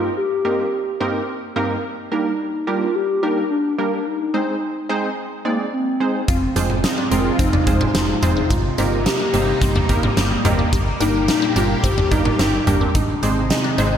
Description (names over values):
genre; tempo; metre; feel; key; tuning
synth-pop; 108 BPM; 4/4; straight; unclear; A4 = 439 Hz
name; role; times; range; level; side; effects
hollow clarinet-like synth lead; melody; 0.0-14.0 s; Bb3 to G4; -22 LUFS; left 1 dB; chorus, diffuse ambient delay
funky polysynth comp; accompaniment; 0.0-14.0 s; G2 to D5; -24 LUFS; right 2 dB; chorus
lush unison pad; sustained chords; 6.3-14.0 s; Bb2 to G4; -24 LUFS; equal; chorus, phaser
resonant blip pluck; arpeggios; 6.3-14.0 s; C4 to G4; -28 LUFS; left 3 dB; phaser, diffuse ambient delay
solid FM bass; bass; 6.3-14.0 s; F1 to Ab1; -22 LUFS; equal; none
huge arena drum kit; drums; 6.3-13.9 s; cowbell, hi-hat, kick drum, snare drum, toms; -21 LUFS; equal; none
room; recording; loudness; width
wet lush hall reverb, RT60 1.9 s, studio ambience; dreamy mix soaked in reverb; -17 LUFS; side -9 dB against mid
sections
0.0-14.0 A section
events
none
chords
0.0 Eb6/G; 1.8 Gm; 4.1 Ab; 6.3 Fm; 8.5 Eb6/G; 12.9 Ab